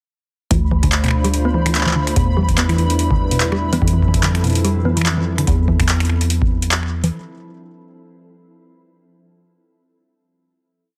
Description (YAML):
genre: IDM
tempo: 145 BPM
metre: 4/4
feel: swing 56% on 16ths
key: unclear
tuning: A4 = 440 Hz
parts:
  - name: glassy FM pad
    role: sustained chords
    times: 0.8-5.5 s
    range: F3 to C5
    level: -28 LUFS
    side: equal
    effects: ensemble chorus, built-in reverb
  - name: thumb-piano-like synth pluck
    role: arpeggios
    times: 0.5-5.4 s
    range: B2 to B3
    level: -24 LUFS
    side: equal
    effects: chorus, tape echo
  - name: deep acid bass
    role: bass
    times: 0.5-7.1 s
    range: D2 to F2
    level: -21 LUFS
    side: equal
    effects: none
  - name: booming analog drum machine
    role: drums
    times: 0.5-7.1 s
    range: congas, finger snaps, handclaps, hi-hat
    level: -23 LUFS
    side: equal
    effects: digital delay
  - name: electronic kick drum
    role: drums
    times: 0.5-6.5 s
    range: none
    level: -22 LUFS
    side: equal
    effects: none
  - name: pulsing gated texture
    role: texture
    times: 0.5-5.5 s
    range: B5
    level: -32 LUFS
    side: equal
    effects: chorus, built-in reverb
room: light reverb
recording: dense, heavily limited modern master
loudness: -17 LUFS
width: mono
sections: 0.5-7.1 groove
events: none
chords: 0.5 Dm7; 2.2 Em7; 3.8 Fmaj7; 5.5 N.C.